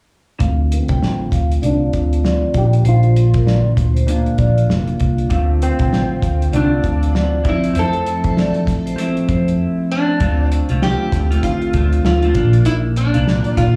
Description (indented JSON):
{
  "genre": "indie pop, bedroom pop",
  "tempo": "98 BPM",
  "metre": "4/4",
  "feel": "swing 60% on 16ths",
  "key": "D minor",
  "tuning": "A4 = 440 Hz",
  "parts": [
    { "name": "vibraphone with medium hard mallets", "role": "second line", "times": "0.4-9.5 s", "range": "Bb4 to G5", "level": "-28 LUFS", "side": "equal", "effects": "subtle chorus, slapback echo, plate reverb" },
    { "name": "clean electric guitar", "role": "accompaniment", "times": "0.4-13.8 s", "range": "Bb2 to F4", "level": "-23 LUFS", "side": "equal", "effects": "lush chorus, warbly pitch drift, low-pass filter, plate reverb" },
    { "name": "vintage muted fingered electric bass", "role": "bass", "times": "0.4-13.8 s", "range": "F1 to D3", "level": "-19 LUFS", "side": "equal", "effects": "none" },
    { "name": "cloth-damped thuddy drum kit", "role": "drums", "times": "0.4-13.7 s", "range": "hi-hat, kick drum, snare drum", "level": "-23 LUFS", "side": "equal", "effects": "slapback echo" },
    { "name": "metal-body resonator slide guitar", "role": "melody", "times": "0.7-13.8 s", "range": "C4 to A4", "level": "-24 LUFS", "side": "equal", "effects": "subtle chorus, low-pass filter, slapback echo, plate reverb" }
  ],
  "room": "light reverb",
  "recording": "live gig heard through the venue's PA, club reverb, small room ambience",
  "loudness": "-16 LUFS",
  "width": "mono",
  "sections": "0.4-10.2 A section; 10.2-13.8 B section",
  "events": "filter sweep 0.4-10.2",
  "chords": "0.4 Dm7; 2.5 Bb; 5.3 Dm7; 7.4 Fmaj7; 10.2 Dm7; 12.3 Bb",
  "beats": "| 0.40 1.02 1.63 2.24 | 2.85 3.47 4.08 4.69 | 5.30 5.92 6.53 7.14 | 7.76 8.37 8.98 9.59 | 10.21 10.82 11.43 12.04 | 12.66 13.27"
}